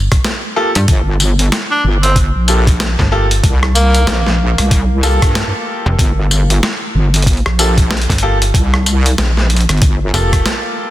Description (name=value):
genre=glitch hop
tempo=94 BPM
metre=4/4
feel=swing 60% on 16ths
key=G minor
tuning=A4 = 440 Hz
part: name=slap-like FM bass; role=bass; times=0.0-10.5 s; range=F1 to G2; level=-14 LUFS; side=equal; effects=none
part: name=boom bap sampler-style drum kit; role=drums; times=0.1-10.6 s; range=hi-hat, rim click, snare drum, tambourine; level=-18 LUFS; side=equal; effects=studio reverb
part: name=electronic kick drum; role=drums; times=0.1-10.4 s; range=none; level=-14 LUFS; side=equal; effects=studio reverb
part: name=bright grand piano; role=stabs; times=0.6-10.9 s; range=Bb3 to A4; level=-19 LUFS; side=equal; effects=sidechain pumping, dub echo
part: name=wobble bass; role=bass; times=0.9-10.1 s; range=G1 to G2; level=-13 LUFS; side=equal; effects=chorus, tube saturation
part: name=breathy tenor saxophone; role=melody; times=1.7-4.3 s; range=Bb3 to D4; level=-18 LUFS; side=equal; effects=dub echo
room=light reverb, digital ambience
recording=dense, heavily limited modern master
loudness=-11 LUFS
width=side -14 dB against mid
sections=0.0-10.9 A section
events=break 10.5-10.9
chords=0.0 Gm9